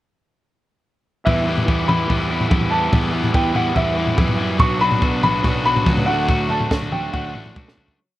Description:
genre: indie rock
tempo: 143 BPM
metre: 4/4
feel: straight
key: E minor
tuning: A4 = 440 Hz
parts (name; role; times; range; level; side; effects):
- clear upright piano; melody; 1.2-7.7 s; E5 to C#6; -22 LUFS; equal; slapback echo
- overdriven semi-hollow guitar; riff; 1.3-8.2 s; E3 to G4; -24 LUFS; left 4 dB; slapback echo
- overdriven semi-hollow guitar; riff; 1.3-8.0 s; F#3 to E4; -26 LUFS; right 6 dB; slapback echo
- fuzz fingered electric bass; bass; 1.3-8.0 s; A1 to F#2; -24 LUFS; equal; overdrive
- compact cocktail drum kit; drums; 1.3-8.0 s; kick drum, snare drum, toms; -20 LUFS; equal; none
room: little or no reverb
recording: recorded outdoors, with no room sound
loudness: -16 LUFS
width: side -15 dB against mid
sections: 1.3-8.0 verse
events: fade-out 6.3-8.0; drum fill 7.6-8.0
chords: 1.3 Em; 4.6 Bm; 6.1 D

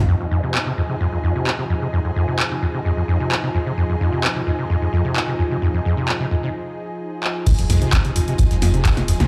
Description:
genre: acid house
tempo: 130 BPM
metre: 4/4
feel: straight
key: F minor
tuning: A4 = 442 Hz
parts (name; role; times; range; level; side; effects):
- lush unison pad; sustained chords; 0.0-9.3 s; F3 to Ab4; -29 LUFS; equal; chorus, sidechain pumping
- acid bass, saw; riff; 0.0-9.3 s; F2 to C3; -22 LUFS; equal; overdrive, subtle chorus, sidechain pumping
- warm sub bass; bass; 0.0, 7.5-9.3 s; F1 to C2; -24 LUFS; equal; sidechain pumping
- punchy analog drum machine; drums; 0.5-9.3 s; crash cymbal, handclaps, hi-hat, snare drum; -26 LUFS; equal; overdrive
- damped 70s drum kit; drums; 7.5-9.2 s; hi-hat, snare drum, tambourine; -40 LUFS; equal; sidechain pumping on hats, high-pass filter on hats, high-pass filter on snare, sidechain pumping on perc, high-pass filter on perc, high-pass filter on room
- electronic kick drum; drums; 7.5-8.9 s; none; -20 LUFS; equal; none
room: light reverb, small room ambience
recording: played on a big sound system in a bare room, large studio reverb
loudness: -20 LUFS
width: mono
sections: 0.1-7.5 A section; 7.5-9.3 B section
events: break 6.5-7.5; drum fill 7.2; drop 7.5-9.3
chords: 0.1 Fm7

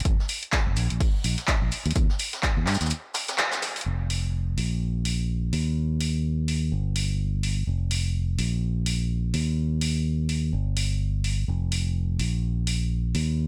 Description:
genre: piano house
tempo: 126 BPM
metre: 4/4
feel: swing 57% on 16ths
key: unclear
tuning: A4 = 441 Hz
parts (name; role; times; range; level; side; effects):
- fingered electric bass; bass; 0.0-13.5 s; F1 to G2; -27 LUFS; equal; sidechain pumping
- punchy analog drum machine; drums; 0.0-13.3 s; handclaps, hi-hat; -32 LUFS; equal; none
- electronic kick drum; drums; 0.1-2.5 s; none; -27 LUFS; equal; none
- jazz brush drum kit; drums; 0.1-3.9 s; hi-hat, shaker, snare drum; -36 LUFS; equal; high-pass filter on hats, high-pass filter on snare, high-pass filter on perc, high-pass filter on room
room: small room ambience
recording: none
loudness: -26 LUFS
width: mono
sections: 0.0-3.9 A section; 3.9-13.5 B section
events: band accent 3.4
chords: none

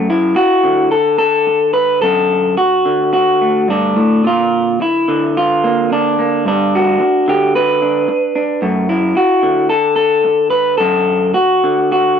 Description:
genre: folk, solo fingerstyle acoustic guitar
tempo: 109 BPM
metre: 4/4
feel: rubato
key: D major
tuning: A4 = 442 Hz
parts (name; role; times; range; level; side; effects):
- electric guitar through a small old amp; solo; 0.0-12.2 s; F#2 to B4; -11 LUFS; equal; none
room: little or no reverb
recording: dry, close 1970s-style studio recording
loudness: -11 LUFS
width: side -7 dB against mid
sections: 0.0-12.2 A section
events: none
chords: 0.0 D/F#; 4.3 Bb; 6.5 G; 8.6 D/F#

